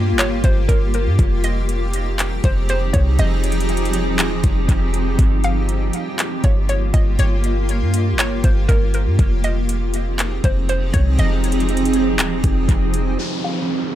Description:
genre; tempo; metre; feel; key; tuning
hip hop, atmospheric cloud-rap; 120 BPM; 4/4; half-time; F minor; A4 = 440 Hz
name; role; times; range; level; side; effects
hollow square pluck; melody; 0.0-13.9 s; Bb4 to F5; -28 LUFS; equal; chorus, low-pass filter, dub echo
granular cloud pad; sustained chords; 0.0-13.9 s; G2 to Ab4; -22 LUFS; right 1 dB; built-in reverb, sidechain pumping, low-pass filter
clean 808-style bass; bass; 0.0-13.2 s; Eb1 to G2; -18 LUFS; equal; none
smooth R&B drum kit; drums; 0.2-13.1 s; handclaps, hi-hat, kick drum; -19 LUFS; equal; none
downlifter; sound effects; 13.2-13.9 s; none; -26 LUFS; left 1 dB; none
room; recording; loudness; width
little or no reverb; echo-heavy mix; -16 LUFS; side -12 dB against mid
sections
0.0-13.2 A section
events
none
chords
0.0 Gm7b5; 1.2 Fm7; 5.2 Gm7b5; 9.2 Fm7; 13.2 Gm7b5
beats
0.19 0.69 | 1.19 1.69 2.19 2.69 | 3.19 3.69 4.19 4.69 | 5.19 5.69 6.19 6.69 | 7.19 7.69 8.19 8.69 | 9.19 9.69 10.19 10.69 | 11.19 11.69 12.19 12.69 | 13.19 13.69

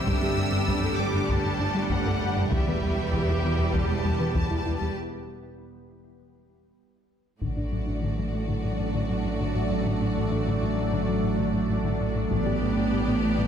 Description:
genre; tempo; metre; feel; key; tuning
cinematic, hybrid orchestral and electronic film score; 98 BPM; 4/4; straight; unclear; A4 = 440 Hz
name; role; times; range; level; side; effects
clear symphonic violin section; melody; 0.0-5.0 s; E5 to E6; -34 LUFS; left 2 dB; low-pass filter
bright symphonic violin section; second line; 0.0-13.5 s; F#4 to D5; -36 LUFS; left 3 dB; none
clear symphonic viola section; accompaniment; 0.0-13.5 s; G3 to G4; -32 LUFS; right 2 dB; low-pass filter
evolving wavetable pad; sustained chords; 0.0-13.5 s; F#3 to D5; -32 LUFS; right 1 dB; chorus, built-in reverb, low-pass filter
clear symphonic cello section; bass; 0.0-13.5 s; E2 to A2; -32 LUFS; right 2 dB; none
clear symphonic double bass section; bass; 0.0-13.5 s; E1 to A1; -33 LUFS; right 3 dB; none
thumb-piano-like synth pluck; arpeggios; 0.1-13.5 s; D3 to A4; -35 LUFS; left 2 dB; chorus, low-pass filter, tape echo
rubbery square bass; riff; 0.1-13.5 s; E2 to A3; -31 LUFS; left 2 dB; low-pass filter
taiko ensemble; drums; 0.1-8.6, 12.3-13.5 s; none; -32 LUFS; equal; none
saturated sub bass; bass; 7.4-13.5 s; A1; -32 LUFS; equal; none
room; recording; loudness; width
moderate scoring stage reverb, RT60 1.4 s; none; -24 LUFS; side -8 dB against mid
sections
0.0-7.4 A section; 7.4-13.5 B section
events
break 5.0-7.4; drum fill 6.8-7.4; filter sweep 7.4-13.5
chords
0.1 Gsus2; 2.5 Em; 5.0 N.C.; 7.4 D/A; 12.3 G/A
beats
| 0.07 0.68 1.29 1.91 | 2.52 3.13 3.74 4.36 | 4.97 5.58 6.19 6.80 | 7.42 8.03 8.64 9.25 | 9.87 10.48 11.09 11.70 | 12.31 12.93

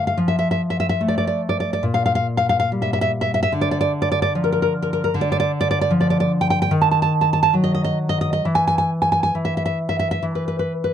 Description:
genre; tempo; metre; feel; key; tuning
romantic piece for solo classical guitar; 62-76 BPM; 2/4; rubato; D minor; A4 = 439 Hz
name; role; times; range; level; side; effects
nylon-string guitar; solo; 0.0-10.9 s; Bb2 to A5; -17 LUFS; equal; none
room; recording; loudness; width
light reverb; dark, warm production; -17 LUFS; side -9 dB against mid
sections
0.0-10.9 A section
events
none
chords
0.2 Fmaj7; 1.8 Edim/Bb; 3.5 Dm; 6.7 D#dim; 8.5 E5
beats
| 0.18 1.01 | 1.84 2.69 | 3.50 4.32 | 5.12 5.91 | 6.72 7.54 | 8.45 9.34 | 10.25

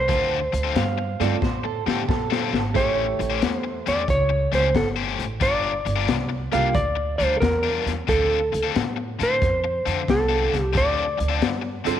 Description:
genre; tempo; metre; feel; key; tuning
electric blues shuffle; 90 BPM; 4/4; swing 68% on 8ths; D minor; A4 = 440 Hz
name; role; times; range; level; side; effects
clean lap steel guitar; melody; 0.0-12.0 s; A4 to F5; -23 LUFS; right 1 dB; none
upright bass; bass; 0.0-12.0 s; G1 to Bb2; -27 LUFS; right 2 dB; none
cranked stack guitar; riff; 0.1-12.0 s; D3 to B#4; -28 LUFS; left 11 dB; overdrive
crunchy breakbeat drum kit; drums; 0.1-12.0 s; hi-hat, kick drum, snare drum; -26 LUFS; left 4 dB; none
electric guitar through a small old amp; second line; 0.8-2.6, 11.9-12.0 s; G4 to F5; -30 LUFS; right 13 dB; spring reverb
clear baby grand piano; accompaniment; 1.2-6.7, 11.8-12.0 s; A3 to A4; -29 LUFS; right 13 dB; none
room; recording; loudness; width
moderate plate reverb, RT60 1.5 s, small room ambience; 1960s-style stereo with parts hard left and right; -20 LUFS; side -10 dB against mid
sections
0.0-12.0 A section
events
drum fill 1.4-2.8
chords
0.0 Dm7; 2.8 A7#9; 5.4 Gm7; 8.1 Dm7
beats
| 0.09 0.75 1.42 2.08 | 2.75 3.42 4.08 4.75 | 5.42 6.08 6.75 7.42 | 8.08 8.75 9.41 10.08 | 10.75 11.41

